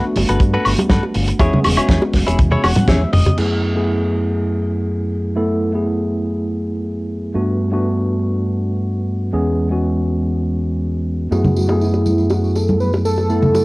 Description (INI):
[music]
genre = nu-disco, nu disco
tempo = 121 BPM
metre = 4/4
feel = straight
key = F# minor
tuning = A4 = 440 Hz
[part]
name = mellow tine electric piano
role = accompaniment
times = 0.0-13.6 s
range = G#3 to A4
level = -20 LUFS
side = equal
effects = medium stereo tremolo, sidechain pumping, cassette tape, tape echo
[part]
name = direct-recorded clean electric guitar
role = riff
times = 0.0-3.4 s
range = E4 to F#5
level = -22 LUFS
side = left 1 dB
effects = wide subtle chorus, low-pass filter, cassette tape, tape echo
[part]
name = fingered electric bass with an envelope filter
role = bass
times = 0.2-13.6 s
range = E1 to G2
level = -20 LUFS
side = equal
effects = tube saturation
[part]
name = damped 70s drum kit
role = drums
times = 0.2-3.5 s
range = crash cymbal, hi-hat, snare drum, toms, woodblock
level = -19 LUFS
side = equal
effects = cassette tape
[part]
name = congas, bongos and tambourine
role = percussion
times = 0.2-3.4, 11.3-13.6 s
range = none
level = -21 LUFS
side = equal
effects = none
[part]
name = kick drum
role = drums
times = 0.4-3.0 s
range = none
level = -16 LUFS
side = equal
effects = cassette tape
[part]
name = wide unison lead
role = melody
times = 11.3-13.6 s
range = E4 to B4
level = -20 LUFS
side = equal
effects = cassette tape
[sound]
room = wet small room reverb, RT60 0.5 s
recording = home recording on cassette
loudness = -15 LUFS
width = side -23 dB against mid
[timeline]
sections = 0.0-3.4 A section; 3.4-13.6 B section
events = drum fill 2.4-3.4; clean electric guitar fill 2.4-3.4; band accent 2.9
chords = 0.0 Gmaj9; 1.4 E6; 3.4 F#m11; 7.3 Gmaj9; 9.3 E6; 11.3 F#m11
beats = 0.41 0.90 | 1.40 1.89 2.39 2.89 | 3.38 3.88 4.37 4.87 | 5.37 5.86 6.36 6.85 | 7.35 7.84 8.34 8.84 | 9.33 9.83 10.32 10.82 | 11.32 11.81 12.31 12.80 | 13.30